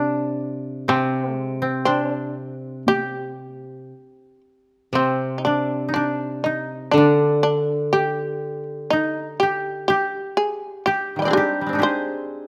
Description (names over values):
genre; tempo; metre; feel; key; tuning
japanese traditional, Japanese chamber music; 61 BPM; 4/4; rubato; unclear; A4 = 440 Hz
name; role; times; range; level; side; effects
shamisen; melody; 0.0-12.5 s; C4 to G5; -26 LUFS; equal; none
koto; second line; 0.0-12.5 s; Eb3 to C5; -27 LUFS; equal; none
koto; accompaniment; 0.0-9.9 s; C3 to D3; -26 LUFS; equal; none
taiko ensemble; percussion; 0.9-3.1 s; none; -28 LUFS; equal; none
room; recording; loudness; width
light reverb; close, detailed microphones; -22 LUFS; mono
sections
0.0-5.0 A section; 5.0-12.5 B section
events
none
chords
none